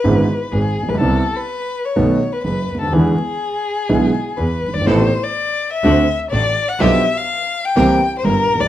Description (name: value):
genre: tango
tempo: 125 BPM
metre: 4/4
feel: rubato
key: unclear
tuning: A4 = 440 Hz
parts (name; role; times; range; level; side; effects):
- warm violin; second line; 0.0-8.7 s; G#4 to G5; -19 LUFS; left 4 dB; none
- dark concert grand piano; accompaniment; 0.0-8.7 s; F#1 to G4; -16 LUFS; right 2 dB; none
- bright double bass; bass; 0.0-8.7 s; F#1 to E2; -22 LUFS; equal; none
- bright symphonic string section; stabs; 4.9-8.4 s; B3 to Bb4; -25 LUFS; right 1 dB; none
room: light reverb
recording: minimal, uncompressed stereo recording, vinyl crackle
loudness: -15 LUFS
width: side -12 dB against mid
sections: 0.0-8.7 A section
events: violin solo 0.0-8.7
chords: 0.0 E7/G#; 1.0 Cmaj7; 2.0 B7; 2.9 E7; 4.9 Amadd9; 5.8 D7; 6.8 G7/B; 7.8 C7